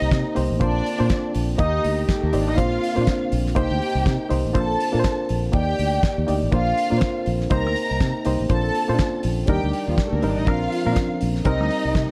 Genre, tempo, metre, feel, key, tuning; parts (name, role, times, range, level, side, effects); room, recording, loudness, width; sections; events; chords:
disco; 122 BPM; 4/4; swing 56% on 16ths; Bb major; A4 = 439 Hz
warm studio string section; second line; 0.0-12.1 s; F3 to Bb5; -29 LUFS; equal
reed electric piano; accompaniment; 0.0-12.1 s; F3 to Eb5; -27 LUFS; equal
mellow French horn section; sustained chords; 0.0-12.1 s; C3 to D5; -34 LUFS; equal
fingered electric bass; bass; 0.0-12.1 s; Ab1 to C3; -26 LUFS; equal
damped 70s drum kit; drums; 0.1-12.1 s; hi-hat, kick drum, snare drum; -27 LUFS; equal
light reverb, small room ambience; -22 LUFS; mono
0.0-12.1 A section
0.0 Cm7; 0.6 Bbadd9; 1.6 Ebmaj7; 2.6 Bbadd9; 3.6 Cm7; 4.6 Bbadd9; 5.5 Ebmaj7; 6.5 Bbadd9; 7.5 Cm7; 8.5 Bbadd9; 9.5 Ebmaj7; 10.5 Bbadd9; 11.5 Cm7